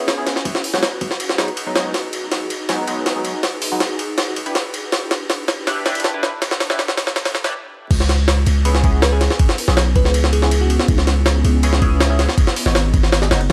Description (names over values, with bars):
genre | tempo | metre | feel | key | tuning
drum and bass, jungle | 161 BPM | 4/4 | straight | C# minor | A4 = 441 Hz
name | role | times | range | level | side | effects
ethereal airy pad | sustained chords | 0.0-13.5 s | G#3 to B4 | -30 LUFS | equal | ensemble chorus, built-in reverb, phaser, vintage 12-bit sampler grit
band-passed chord stab | stabs | 0.0-13.4 s | F#3 to B4 | -28 LUFS | equal | phaser, analog chorus, dub echo
jungle sampler-style drum kit | drums | 0.1-13.5 s | crash cymbal, hi-hat, kick drum, ride cymbal, snare drum | -21 LUFS | equal | overdrive, high-pass filter on cymbals, studio ambience, high-pass filter on kick, high-pass filter on snare, high-pass filter on hats
long sustained 808-style bass | bass | 7.9-13.5 s | F#1 to C#2 | -18 LUFS | equal | none
bell-like FM electric piano | melody | 9.0-11.0 s | F#4 to B4 | -28 LUFS | equal | chorus, dub echo
room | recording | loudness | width
light reverb | vinyl crackle, high-pass filter | -18 LUFS | mono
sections
0.0-7.9 A section; 7.9-13.5 B section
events
build-up 0.0-7.9; filter sweep on ambient pad 0.0-7.9; drum fill 1.9-7.5; stop 7.5-7.9; drop 7.9-13.5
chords
0.5 G#m7; 4.2 Em7; 7.9 C#m7; 12.4 G#m7